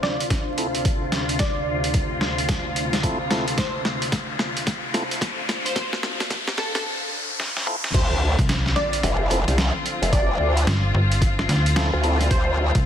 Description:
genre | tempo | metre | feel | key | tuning
glitch hop | 110 BPM | 4/4 | swing 63% on 16ths | D minor | A4 = 440 Hz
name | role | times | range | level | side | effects
plucky unison lead | melody | 0.0-12.5 s | A4 to D5 | -29 LUFS | equal | ensemble chorus, cassette tape, dub echo
rich symphonic string section | sustained chords | 0.0-12.9 s | D2 to F4 | -28 LUFS | left 2 dB | sidechain pumping, low-pass filter
boom bap sampler-style drum kit | drums | 0.0-12.8 s | crash cymbal, hi-hat, snare drum, toms | -26 LUFS | equal | overdrive, studio reverb
riser and impact | sound effects | 1.5-10.1 s | none | -31 LUFS | left 1 dB | none
granular cloud pad | texture | 0.0-6.9 s | D4 to F5 | -34 LUFS | right 1 dB | built-in reverb, sidechain pumping
electronic kick drum | drums | 0.3-12.8 s | none | -23 LUFS | equal | overdrive, studio reverb
tonewheel organ | stabs | 0.6-12.2 s | C4 to A4 | -30 LUFS | equal | stopped rotary speaker, vintage 12-bit sampler grit, sidechain pumping, low-pass filter, dub echo
growl bass | bass | 7.9-12.7 s | F1 to D2 | -21 LUFS | equal | chorus, tube saturation
slap-like FM bass | bass | 8.4-12.9 s | G1 to D2 | -20 LUFS | equal | none
room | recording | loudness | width
light reverb | dense, heavily limited modern master, vinyl crackle, high-pass filter | -20 LUFS | side -9 dB against mid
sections
0.0-7.9 A section; 7.9-12.9 B section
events
build-up 0.0-7.9; drum fill 0.0-6.9, 7.4-7.9; filter sweep on tonewheel organ 0.0-7.9; filter sweep on digital synth lead 0.0-7.9; filter sweep on string section 0.0-7.9; filter sweep 0.0-7.9; riser 1.5-7.9; drop 7.9-12.9; impact 7.9-10.1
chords
0.0 Dm7

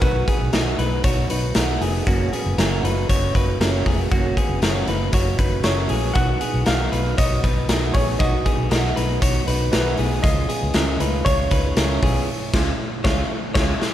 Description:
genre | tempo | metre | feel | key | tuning
jangly indie pop | 118 BPM | 4/4 | straight | unclear | A4 = 439 Hz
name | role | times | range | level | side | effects
warm upright piano | melody | 0.0-1.0, 5.6-13.8 s | B4 to F#5 | -28 LUFS | equal | slapback echo
fingerpicked plugged-in steel-string acoustic guitar | accompaniment | 0.0-13.7 s | F#2 to F#4 | -28 LUFS | right 6 dB | slapback echo
direct-recorded clean electric guitar | arpeggios | 0.0-13.7 s | G#3 to C#5 | -26 LUFS | left 3 dB | slapback echo
vintage muted fingered electric bass | bass | 0.0-13.7 s | E#1 to C#2 | -23 LUFS | equal | none
raw garage drum kit | drums | 0.0-13.9 s | crash cymbal, hi-hat, kick drum, snare drum | -21 LUFS | equal | none
room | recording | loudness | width
light reverb, studio reverb | none | -18 LUFS | side -12 dB against mid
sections
0.0-13.9 A section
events
band accent 12.3-13.9; drum fill 13.3-13.9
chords
0.0 B; 10.2 C#

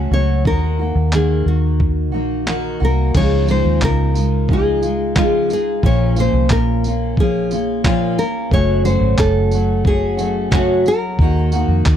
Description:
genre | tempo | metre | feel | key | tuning
acoustic pop | 90 BPM | 4/4 | straight | Db major | A4 = 436 Hz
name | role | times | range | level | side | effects
fingerpicked steel-string acoustic guitar | accompaniment | 0.0-12.0 s | Gb2 to Gb4 | -19 LUFS | equal | double-tracked left and right
vintage muted fingered electric bass | bass | 0.0-12.0 s | Gb1 to F2 | -18 LUFS | equal | none
nylon-string guitar | melody | 0.1-12.0 s | F4 to Db5 | -21 LUFS | left 2 dB | none
dusty soul sampler-style drum kit | drums | 0.5-12.0 s | crash cymbal, handclaps, kick drum, tambourine | -18 LUFS | equal | none
room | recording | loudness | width
digital ambience | dry, close 1970s-style studio recording | -14 LUFS | side -10 dB against mid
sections
0.0-3.1 A section; 3.1-12.0 B section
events
none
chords
0.5 Ebm; 3.1 Dbadd9; 5.8 Bbm; 8.5 Gbm; 11.2 Ebm

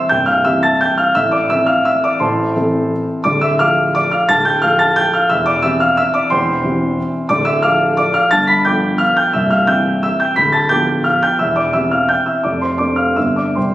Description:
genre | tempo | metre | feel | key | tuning
classical, piano waltz | 147-189 BPM | 3/4 | rubato | C major | A4 = 439 Hz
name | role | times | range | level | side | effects
warm concert grand piano | solo | 0.0-13.7 s | C1 to B6 | -12 LUFS | equal | none
room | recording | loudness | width
moderate recital hall reverb, RT60 1.6 s | recorded on a phone in the room, studio reverb | -12 LUFS | side -14 dB against mid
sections
0.0-13.7 A section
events
none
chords
0.0 C; 1.2 Am; 3.3 Dm; 5.3 C/E; 7.3 Dm; 8.3 G9; 9.3 C; 10.4 G7/D; 11.4 C/E; 12.4 Dm7/F; 13.2 G

